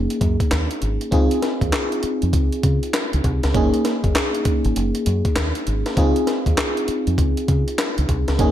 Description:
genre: R&B, new jack swing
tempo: 99 BPM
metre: 4/4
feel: swing 63% on 16ths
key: Db major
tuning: A4 = 440 Hz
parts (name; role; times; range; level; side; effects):
- FM electric piano; accompaniment; 0.0-8.5 s; Bb3 to Ab4; -22 LUFS; equal; chorus
- deep dub fingered electric bass; bass; 0.0-8.5 s; Gb1 to Db3; -21 LUFS; equal; none
- breakbeat sampler-style drum kit; drums; 0.1-8.5 s; handclaps, hi-hat, kick drum, snare drum; -21 LUFS; equal; gated reverb
room: light reverb, digital ambience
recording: bright 1980s-style digital production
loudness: -18 LUFS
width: side -11 dB against mid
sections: 0.0-8.5 A section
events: none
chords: 0.0 Gb69; 1.1 Dbmaj9; 3.5 Gb69; 6.0 Dbmaj9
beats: 0.51 | 1.12 1.73 2.33 2.94 | 3.54 4.15 4.75 5.36 | 5.97 6.57 7.18 7.79 | 8.39

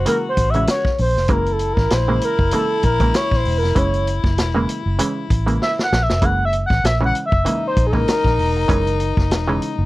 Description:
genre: funk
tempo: 97 BPM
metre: 4/4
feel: swing 56% on 16ths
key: F# mixolydian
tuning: A4 = 439 Hz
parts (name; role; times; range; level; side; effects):
- expressive synth lead; melody; 0.0-9.4 s; A4 to F#5; -20 LUFS; equal; chorus
- raspy baritone saxophone; second line; 0.0-9.9 s; D#4 to F#4; -26 LUFS; left 7 dB; none
- vintage muted fingered electric bass; bass; 0.0-9.9 s; E1 to A#1; -20 LUFS; equal; none
- muted clav; stabs; 0.1-9.8 s; C#3 to C#4; -23 LUFS; right 2 dB; overdrive
- vintage drum kit; drums; 0.1-9.8 s; hi-hat, kick drum, snare drum; -21 LUFS; equal; none
room: little or no reverb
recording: dry, close 1970s-style studio recording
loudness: -16 LUFS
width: side -18 dB against mid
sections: 0.0-9.9 A section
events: analog synth lead solo 0.0-9.9; drum fill 5.6-6.2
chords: 0.0 F#9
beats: 0.06 0.68 | 1.29 1.91 2.53 3.14 | 3.76 4.38 4.99 5.61 | 6.22 6.84 7.46 8.07 | 8.69 9.30

